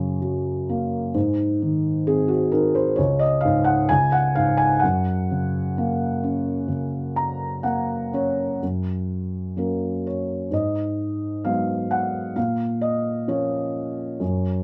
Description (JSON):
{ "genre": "classical, lyrical solo piano", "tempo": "65 BPM", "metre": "4/4", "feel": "rubato", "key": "F# major", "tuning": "A4 = 440 Hz", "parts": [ { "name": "felt-muted upright piano", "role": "solo", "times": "0.0-14.6 s", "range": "C#2 to A#5", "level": "-23 LUFS", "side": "equal", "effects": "none" } ], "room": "light reverb", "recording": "dark, warm production", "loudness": "-23 LUFS", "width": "mono", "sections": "0.0-8.6 A section; 8.6-14.6 B section", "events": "felt piano fill 6.7-8.6", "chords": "0.0 F#; 1.1 G#; 3.0 C#5; 4.8 F#; 10.5 G#m7; 12.4 A#m", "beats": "0.24 | 1.15 2.07 2.98 3.90 | 4.82 5.75 6.69 7.65 | 8.62 9.57 10.51 11.45 | 12.37 13.29 14.21" }